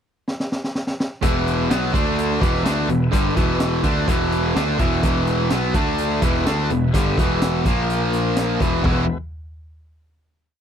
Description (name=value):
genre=classic rock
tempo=126 BPM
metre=4/4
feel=straight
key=unclear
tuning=A4 = 442 Hz
part: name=raw garage drum kit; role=drums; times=0.3-9.0 s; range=hi-hat, kick drum, snare drum, toms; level=-23 LUFS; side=equal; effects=none
part: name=tonewheel organ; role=sustained chords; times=1.2-9.2 s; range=G#3 to B4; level=-34 LUFS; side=equal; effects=none
part: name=distorted electric guitar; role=riff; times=1.2-9.0 s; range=E2 to E4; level=-23 LUFS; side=right 12 dB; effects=overdrive
part: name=tight distorted guitar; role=riff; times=1.2-9.0 s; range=E2 to D4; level=-23 LUFS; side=left 16 dB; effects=distortion
part: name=fuzz picked electric bass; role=bass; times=1.2-9.1 s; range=E1 to D2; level=-23 LUFS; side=equal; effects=overdrive
room=little or no reverb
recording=dry, close 1970s-style studio recording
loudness=-18 LUFS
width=side -8 dB against mid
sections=0.0-1.2 pickup bar; 1.2-8.8 riff; 8.8-10.6 final chord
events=drum fill 0.3-1.2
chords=0.0 N.C.; 1.2 E; 1.9 D5; 2.4 E; 5.7 D5; 6.2 E; 7.7 A#5; 8.6 E5; 8.8 E